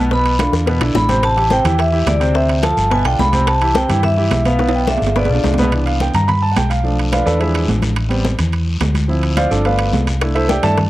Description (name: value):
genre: Afro-Cuban jazz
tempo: 214 BPM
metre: 4/4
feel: straight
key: A minor, C major from 5.7 s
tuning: A4 = 440 Hz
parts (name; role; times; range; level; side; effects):
- clear concert grand piano; accompaniment; 0.0-10.8 s; B2 to B5; -18 LUFS; right 1 dB; none
- hollow-body short-scale fingered electric bass; bass; 0.0-10.9 s; G1 to G2; -17 LUFS; equal; none
- vibraphone with medium hard mallets; melody; 0.1-5.6 s; D5 to B5; -18 LUFS; equal; none
- bongos; percussion; 0.1-5.7, 10.2-10.9 s; none; -25 LUFS; left 7 dB; none
- congas; percussion; 0.1-10.9 s; none; -24 LUFS; left 2 dB; none
- guiro; percussion; 0.1-10.9 s; none; -31 LUFS; left 4 dB; none
- timbales; percussion; 0.3-10.9 s; none; -25 LUFS; right 6 dB; none
room: moderate spring reverb, RT60 1.9 s, small room ambience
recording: dark, warm production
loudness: -13 LUFS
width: side -16 dB against mid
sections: 0.0-5.7 A section; 5.7-10.9 B section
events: drum fill 0.4-1.2, 4.6-5.7; grand piano solo 5.7-10.9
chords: 0.1 Bdim; 0.7 E5; 1.2 Am7; 2.4 Dm9; 2.9 G7; 3.5 Cmaj7; 4.6 Bdim; 5.2 G7; 5.7 Cmaj7; 6.8 Bm7b5; 7.4 E7b9; 8.0 Am7; 9.1 Dm7; 9.7 G7; 10.2 C69